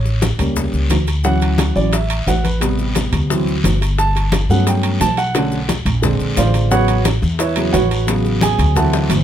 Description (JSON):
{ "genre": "Afro-Cuban jazz", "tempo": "176 BPM", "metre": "4/4", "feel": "straight", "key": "A major", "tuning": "A4 = 439 Hz", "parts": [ { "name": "warm grand piano", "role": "accompaniment", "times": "0.0-9.2 s", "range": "C3 to A5", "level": "-18 LUFS", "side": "right 2 dB", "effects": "none" }, { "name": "upright bass", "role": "bass", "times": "0.0-9.2 s", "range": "G1 to G2", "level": "-18 LUFS", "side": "equal", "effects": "none" }, { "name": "bongos", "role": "percussion", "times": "0.1-9.0 s", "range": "none", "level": "-26 LUFS", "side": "left 8 dB", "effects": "none" }, { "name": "congas", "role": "percussion", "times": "0.1-9.2 s", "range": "none", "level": "-23 LUFS", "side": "left 1 dB", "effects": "none" }, { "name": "maracas", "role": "percussion", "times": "0.1-9.2 s", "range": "none", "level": "-31 LUFS", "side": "left 5 dB", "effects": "none" }, { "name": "guiro", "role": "percussion", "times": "0.2-9.2 s", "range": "none", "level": "-30 LUFS", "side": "left 2 dB", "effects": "none" }, { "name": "timbales", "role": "percussion", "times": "0.2-9.2 s", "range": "none", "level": "-25 LUFS", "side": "right 6 dB", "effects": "none" } ], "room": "little or no reverb", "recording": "close, detailed microphones", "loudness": "-14 LUFS", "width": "side -10 dB against mid", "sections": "0.0-9.2 A section", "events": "grand piano solo 0.0-9.2; drum fill 8.9", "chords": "0.0 A7b9; 1.3 Dmaj9; 2.6 Am7; 3.3 D9; 4.0 Gmaj9#11; 5.4 Bm9; 6.0 Bb9; 6.7 A69" }